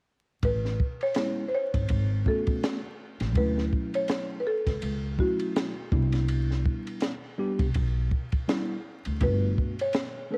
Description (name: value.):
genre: hip hop, jazz-hop.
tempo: 82 BPM.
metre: 4/4.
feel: swing 57% on 16ths.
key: A major.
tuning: A4 = 435 Hz.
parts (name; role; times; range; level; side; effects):
buzzing marimba with medium mallets; melody; 0.4-10.4 s; F#4 to C#5; -33 LUFS; equal; cassette tape, analog delay.
upright bass; bass; 0.4-9.5 s; G1 to D2; -30 LUFS; equal; none.
compact cocktail drum kit; drums; 0.4-10.1 s; hi-hat, kick drum, ride cymbal, snare drum; -32 LUFS; equal; cassette tape.
mellow tine electric piano; accompaniment; 1.2-10.4 s; F#3 to A4; -35 LUFS; equal; cassette tape.
room: light reverb.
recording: home recording on cassette, vinyl crackle.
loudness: -28 LUFS.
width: mono.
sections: 0.4-10.4 A section.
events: none.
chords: 0.4 Amaj9; 3.4 Dmaj9; 5.9 Cmaj9; 9.2 Gmaj9.